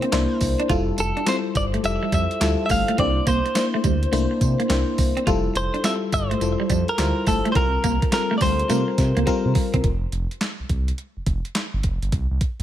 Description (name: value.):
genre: R&B, new jack swing.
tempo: 105 BPM.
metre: 4/4.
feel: swing 64% on 16ths.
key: F major.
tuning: A4 = 440 Hz.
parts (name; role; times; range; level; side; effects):
direct-recorded clean electric guitar; melody; 0.0-9.5 s; A4 to F5; -25 LUFS; equal; ping-pong delay.
FM electric piano; accompaniment; 0.0-9.9 s; G3 to C5; -24 LUFS; left 4 dB; chorus.
clean electric guitar; riff; 0.0-9.8 s; G3 to F4; -27 LUFS; right 3 dB; lush chorus.
crisp 8-bit digital drum machine; drums; 0.0-12.6 s; handclaps, hi-hat, kick drum, snare drum, tambourine; -25 LUFS; right 1 dB; overdrive.
smooth gliding synth bass; bass; 0.1-12.6 s; F1 to C3; -24 LUFS; equal; none.
room: light reverb, digital ambience.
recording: none.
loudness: -19 LUFS.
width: side -12 dB against mid.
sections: 0.0-9.8 A section; 9.8-12.6 B section.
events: drum fill 9.3-9.8.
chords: 0.0 C9; 0.7 Fmaj9; 3.0 C9; 5.3 Fmaj9; 7.6 C7sus4; 9.8 Fsus2; 12.1 N.C..